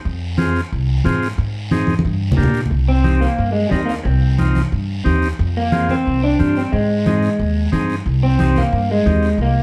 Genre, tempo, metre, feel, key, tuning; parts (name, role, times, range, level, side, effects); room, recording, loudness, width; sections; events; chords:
latin, cumbia; 180 BPM; 4/4; straight; C minor; A4 = 440 Hz
upright bass; bass; 0.1-9.6 s; C2 to Bb2; -21 LUFS; equal
guiro; percussion; 0.1-9.6 s; -38 LUFS; equal
combo organ; accompaniment; 0.4-9.3 s; Bb3 to Bb4; -25 LUFS; equal
congas; percussion; 0.4-9.2 s; -24 LUFS; equal
electric guitar through a small old amp; melody; 2.9-9.6 s; G3 to D4; -21 LUFS; equal; spring reverb, slapback echo
moderate studio reverb, RT60 0.9 s; dark, warm production; -17 LUFS; mono
0.0-2.7 A section; 2.7-9.6 B section
drum fill 1.9-2.7
0.0 Fm; 1.4 Ab; 2.0 Gm; 2.7 Cm; 5.4 Fm; 6.7 Ab; 8.1 Cm